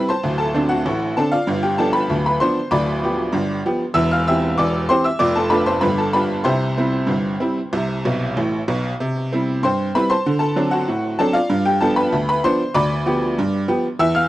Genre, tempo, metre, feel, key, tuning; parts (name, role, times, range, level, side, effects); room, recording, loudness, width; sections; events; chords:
ragtime piano; 96 BPM; 2/4; straight; C major; A4 = 440 Hz
tack piano; solo; 0.0-14.3 s; D1 to F6; -17 LUFS; equal; tape echo
light reverb; dry, close 1970s-style studio recording; -17 LUFS; side -15 dB against mid
0.0-9.0 A section; 9.0-14.3 A section
honky-tonk piano fill 8.1-9.0
0.2 D7; 1.5 G7; 2.7 G7/D; 4.0 C/E; 5.2 Dm/F; 5.8 G7; 6.5 C; 10.2 D7; 11.5 G7; 12.7 G7/D